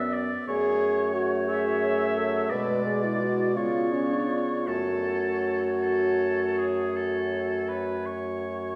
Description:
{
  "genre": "classical, slow romantic movement for wind quintet",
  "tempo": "52-60 BPM (dotted quarters)",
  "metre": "12/8",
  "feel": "rubato",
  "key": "F# minor",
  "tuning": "A4 = 440 Hz",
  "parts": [
    { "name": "silver concert flute", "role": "melody", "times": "0.0-8.8 s", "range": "C#5 to D5", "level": "-37 LUFS", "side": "equal", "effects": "none" },
    { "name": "warm oboe", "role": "second line", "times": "0.0-8.8 s", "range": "G#4 to E5", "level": "-35 LUFS", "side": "equal", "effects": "none" },
    { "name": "clear clarinet", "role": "accompaniment", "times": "0.0-8.8 s", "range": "G#3 to B3", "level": "-37 LUFS", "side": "equal", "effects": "none" },
    { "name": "warm French horn", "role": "accompaniment", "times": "0.0-8.8 s", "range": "C#4 to B4", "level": "-29 LUFS", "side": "equal", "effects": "none" },
    { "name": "warm bassoon", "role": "bass", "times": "0.0-8.8 s", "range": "F#2 to C#3", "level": "-34 LUFS", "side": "equal", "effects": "none" }
  ],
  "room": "wet recital hall reverb, RT60 1.8 s",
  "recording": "heard from further back in the room",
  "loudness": "-26 LUFS",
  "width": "mono",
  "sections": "0.0-8.8 A section",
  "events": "none",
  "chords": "0.5 F#m; 2.5 G#dim/B; 3.6 C#7b9; 4.7 F#m",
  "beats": "| 0.48 1.50 2.52 3.56 | 4.67 5.81 6.94 8.06"
}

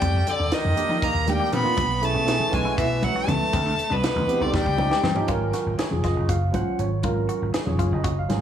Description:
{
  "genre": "electric jazz fusion",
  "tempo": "239 BPM (eighths)",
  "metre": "7/8",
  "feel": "straight",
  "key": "Ab mixolydian from 5.3 s",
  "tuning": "A4 = 440 Hz",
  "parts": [
    { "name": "bright violin", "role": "melody", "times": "0.0-5.1 s", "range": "B4 to B5", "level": "-26 LUFS", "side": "equal", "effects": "tape echo" },
    { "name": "warm tenor saxophone", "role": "second line", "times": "0.0-5.1 s", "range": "B2 to B3", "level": "-29 LUFS", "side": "left 4 dB", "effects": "tape echo" },
    { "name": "barky tine electric piano", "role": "accompaniment", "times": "0.0-8.4 s", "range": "Eb3 to Gb5", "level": "-27 LUFS", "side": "right 4 dB", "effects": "lush chorus" },
    { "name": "clean electric guitar", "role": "stabs", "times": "0.0-8.2 s", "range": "B3 to Ab4", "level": "-32 LUFS", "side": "left 6 dB", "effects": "lush chorus" },
    { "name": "vintage slap bass", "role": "bass", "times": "0.0-8.4 s", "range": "Gb1 to F3", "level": "-25 LUFS", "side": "equal", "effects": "none" },
    { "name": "crisp fusion drum kit", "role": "drums", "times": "0.0-8.4 s", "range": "hi-hat, kick drum, snare drum, toms", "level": "-29 LUFS", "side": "right 1 dB", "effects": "none" },
    { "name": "congas", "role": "percussion", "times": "0.0-8.4 s", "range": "none", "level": "-31 LUFS", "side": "left 2 dB", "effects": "none" }
  ],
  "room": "light reverb, studio reverb",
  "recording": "small room ambience",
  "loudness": "-20 LUFS",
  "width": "side -9 dB against mid",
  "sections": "0.0-5.3 A section; 5.3-8.4 B section",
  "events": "drum fill 4.5-5.3",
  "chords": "0.0 F13sus4; 1.8 B13sus4; 3.5 D13sus4; 4.5 D#9; 5.3 Ab13sus4",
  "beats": "| 0.02 0.27 0.52 0.77 1.02 1.27 1.52 | 1.77 2.03 2.28 2.53 2.78 3.03 3.28 | 3.53 3.78 4.03 4.28 4.53 4.78 5.04 | 5.29 5.54 5.79 6.04 6.29 6.54 6.79 | 7.04 7.30 7.55 7.80 8.05 8.30"
}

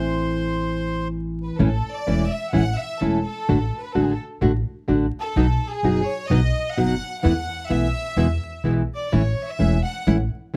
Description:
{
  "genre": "tango",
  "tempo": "127 BPM",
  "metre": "4/4",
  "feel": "rubato",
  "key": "A major",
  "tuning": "A4 = 440 Hz",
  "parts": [
    { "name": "bandoneon", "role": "melody", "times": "0.0-1.1 s", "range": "C5", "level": "-30 LUFS", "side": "equal", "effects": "none" },
    { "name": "nylon-string guitar", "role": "accompaniment", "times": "0.0-10.6 s", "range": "B2 to F#4", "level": "-25 LUFS", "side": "equal", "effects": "none" },
    { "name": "upright bass", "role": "bass", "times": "0.0-10.3 s", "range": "E1 to E2", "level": "-25 LUFS", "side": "equal", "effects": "none" },
    { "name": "clear studio violin section", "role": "second line", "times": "1.4-10.1 s", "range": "G#4 to F#5", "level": "-31 LUFS", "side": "equal", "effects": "none" }
  ],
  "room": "light reverb",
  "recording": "close, detailed microphones, vinyl crackle",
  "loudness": "-22 LUFS",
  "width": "mono",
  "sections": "0.0-1.6 A section; 1.6-10.6 B section",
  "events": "violin section solo 1.6-10.6",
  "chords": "0.0 Am; 1.6 A; 3.5 D/A; 5.4 B; 7.2 Esus4; 8.2 E; 9.1 A",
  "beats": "0.14 0.62 1.11 | 1.59 2.07 2.54 3.01 | 3.48 3.96 4.43 4.89 | 5.36 5.83 6.30 6.76 | 7.23 7.70 8.17 8.64 | 9.12 9.60 10.07 10.54"
}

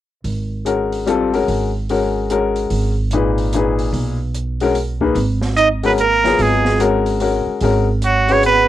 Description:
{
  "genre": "modal jazz",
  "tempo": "146 BPM",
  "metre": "3/4",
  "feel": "swing 64% on 8ths",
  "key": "G# dorian",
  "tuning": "A4 = 440 Hz",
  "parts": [
    { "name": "upright bass", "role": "bass", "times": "0.2-8.7 s", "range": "G#1 to B1", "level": "-20 LUFS", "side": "right 2 dB", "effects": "none" },
    { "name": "open jazz drum kit", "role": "drums", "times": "0.2-8.6 s", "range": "hi-hat, kick drum, snare drum", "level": "-31 LUFS", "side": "right 2 dB", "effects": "cassette tape" },
    { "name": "bright upright piano", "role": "accompaniment", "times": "0.7-8.7 s", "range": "A#2 to B4", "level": "-17 LUFS", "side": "left 4 dB", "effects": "cassette tape" },
    { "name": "trumpet with straight mute", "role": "melody", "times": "5.6-8.7 s", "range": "F#4 to D#5", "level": "-15 LUFS", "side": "right 2 dB", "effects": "cassette tape" },
    { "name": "trombone with cup mute", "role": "second line", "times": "5.6-8.7 s", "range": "F#3 to D#4", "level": "-19 LUFS", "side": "right 8 dB", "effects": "cassette tape" }
  ],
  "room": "small room ambience",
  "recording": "home recording on cassette",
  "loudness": "-15 LUFS",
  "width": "side -13 dB against mid",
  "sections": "0.2-5.2 A section; 5.2-8.7 B section",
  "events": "none",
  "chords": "0.2 G#m11",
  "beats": "| 0.25 0.66 1.07 | 1.48 1.89 2.30 | 2.71 3.12 3.52 | 3.93 4.34 4.75 | 5.16 5.57 5.98 | 6.39 6.80 7.21 | 7.62 8.03 8.44"
}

